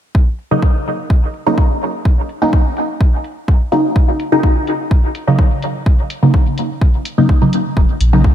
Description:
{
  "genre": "dub techno",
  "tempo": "126 BPM",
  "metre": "4/4",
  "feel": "straight",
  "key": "Eb minor",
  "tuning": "A4 = 441 Hz",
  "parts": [
    { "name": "electronic kick drum", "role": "drums", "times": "0.1-8.3 s", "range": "none", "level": "-12 LUFS", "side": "equal", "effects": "none" },
    { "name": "electronic hi-hat", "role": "drums", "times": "0.4-8.1 s", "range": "none", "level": "-31 LUFS", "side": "left 2 dB", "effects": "low-pass filter on hats, low-pass filter on room" },
    { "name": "filtered dub chord stab", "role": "stabs", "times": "0.5-8.2 s", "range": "Db3 to Eb4", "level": "-16 LUFS", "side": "equal", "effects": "phaser, dub echo" },
    { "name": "pure sine sub bass", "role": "bass", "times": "7.8-8.3 s", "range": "Eb1 to Bb1", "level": "-13 LUFS", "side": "equal", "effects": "sidechain pumping" }
  ],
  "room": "light reverb, digital ambience",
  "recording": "none",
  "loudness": "-12 LUFS",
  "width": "side -10 dB against mid",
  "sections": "0.1-8.3 A section",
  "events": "filter sweep on drum 0.1-8.3; filter sweep on synth stab 0.1-8.3",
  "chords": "0.1 Ebm7"
}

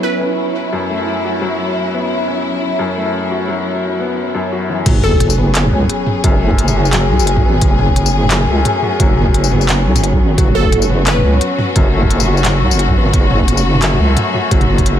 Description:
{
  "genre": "half-time drum and bass",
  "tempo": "174 BPM",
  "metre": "4/4",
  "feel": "swing 55% on 16ths, half-time",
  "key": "F# minor",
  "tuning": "A4 = 438 Hz",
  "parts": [
    { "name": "glassy wavetable pluck", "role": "melody", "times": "0.0-0.4, 5.0-5.3, 10.6-11.4 s", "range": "A4 to B4", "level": "-21 LUFS", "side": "left 1 dB", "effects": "chorus, digital delay" },
    { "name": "clear studio string section", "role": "sustained chords", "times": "0.0-15.0 s", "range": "F#3 to G#4", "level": "-19 LUFS", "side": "left 2 dB", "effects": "sidechain pumping" },
    { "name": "felt-muted upright piano", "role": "arpeggios", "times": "0.0-15.0 s", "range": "F#2 to F#4", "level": "-19 LUFS", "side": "left 3 dB", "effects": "ping-pong delay" },
    { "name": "pulsing gated texture", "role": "texture", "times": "0.0-4.9 s", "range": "E4", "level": "-27 LUFS", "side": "right 6 dB", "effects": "chorus, built-in reverb" },
    { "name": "deep soft wobble bass", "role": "bass", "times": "4.9-15.0 s", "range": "F#1 to C#2", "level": "-14 LUFS", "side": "right 1 dB", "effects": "chorus" },
    { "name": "electronic kick drum", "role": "drums", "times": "4.9-14.8 s", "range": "none", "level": "-15 LUFS", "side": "right 1 dB", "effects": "none" },
    { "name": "industrial drum kit", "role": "drums", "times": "4.9-14.9 s", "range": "crash cymbal, handclaps, hi-hat, tambourine, toms", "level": "-18 LUFS", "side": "equal", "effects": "none" },
    { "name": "sub drop", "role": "sound effects", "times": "4.9-6.2 s", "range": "none", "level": "-22 LUFS", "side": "right 1 dB", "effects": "none" }
  ],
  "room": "light reverb",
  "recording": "none",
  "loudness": "-12 LUFS",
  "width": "side -10 dB against mid",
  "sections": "0.0-4.9 A section; 4.9-15.0 B section",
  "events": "drop 4.9-15.0; impact 4.9-6.2",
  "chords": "0.0 F#m; 4.9 F#madd9"
}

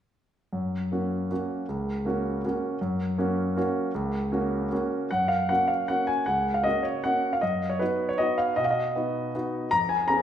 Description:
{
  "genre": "classical, piano waltz",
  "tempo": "157 BPM",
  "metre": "3/4",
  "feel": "uneven beats, rubato",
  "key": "F# major",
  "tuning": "A4 = 440 Hz",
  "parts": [
    { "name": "warm concert grand piano", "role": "solo", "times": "0.5-10.2 s", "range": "C#2 to A#5", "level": "-24 LUFS", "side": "equal", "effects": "none" }
  ],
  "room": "wet recital hall reverb, RT60 1.4 s",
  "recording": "recorded in a church or concert hall",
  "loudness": "-24 LUFS",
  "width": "side -10 dB against mid",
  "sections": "0.5-5.1 A section; 5.1-10.2 B section",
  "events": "none",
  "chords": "0.5 F#; 7.4 B/F#; 9.7 C#7/E#"
}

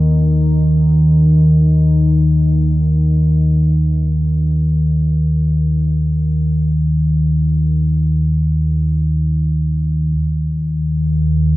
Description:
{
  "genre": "ambient",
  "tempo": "free time",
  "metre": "none",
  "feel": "none",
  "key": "unclear",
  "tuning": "A4 = 440 Hz",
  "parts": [
    { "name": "deep rumbling drone", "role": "solo", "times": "0.0-11.6 s", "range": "Eb2 to Eb3", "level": "-12 LUFS", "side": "equal", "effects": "built-in reverb" }
  ],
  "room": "light reverb",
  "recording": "none",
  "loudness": "-12 LUFS",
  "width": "side -18 dB against mid",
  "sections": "0.0-10.2 A section; 10.2-11.6 B section",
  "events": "none",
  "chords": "none"
}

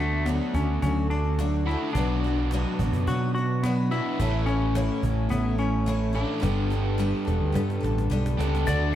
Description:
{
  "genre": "folk rock and heartland rock",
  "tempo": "107 BPM",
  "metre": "4/4",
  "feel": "straight",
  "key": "unclear",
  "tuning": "A4 = 441 Hz",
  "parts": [
    { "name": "clean lap steel guitar", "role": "melody", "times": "0.0-8.9 s", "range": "A3 to D5", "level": "-30 LUFS", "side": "left 2 dB", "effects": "analog delay" },
    { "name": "picked twelve-string acoustic guitar", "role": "accompaniment", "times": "0.0-8.9 s", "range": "A2 to A4", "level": "-31 LUFS", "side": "left 4 dB", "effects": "none" },
    { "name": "overdriven semi-hollow guitar", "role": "riff", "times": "0.0-8.9 s", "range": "G2 to A4", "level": "-30 LUFS", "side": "right 3 dB", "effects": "none" },
    { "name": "picked electric bass", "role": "bass", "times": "0.0-8.9 s", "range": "E1 to B2", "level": "-26 LUFS", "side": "right 1 dB", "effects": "none" },
    { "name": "cajon", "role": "drums", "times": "0.3-8.8 s", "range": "none", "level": "-34 LUFS", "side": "right 1 dB", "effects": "none" },
    { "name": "egg shaker", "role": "percussion", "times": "8.7-8.8 s", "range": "none", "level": "-48 LUFS", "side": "right 23 dB", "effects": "none" }
  ],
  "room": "studio reverb",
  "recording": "none",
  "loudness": "-23 LUFS",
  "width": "side -11 dB against mid",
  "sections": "0.0-8.7 A section",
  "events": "drum fill 6.4-8.7",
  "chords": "0.0 D; 1.9 Bm; 4.2 A; 6.4 Gadd9"
}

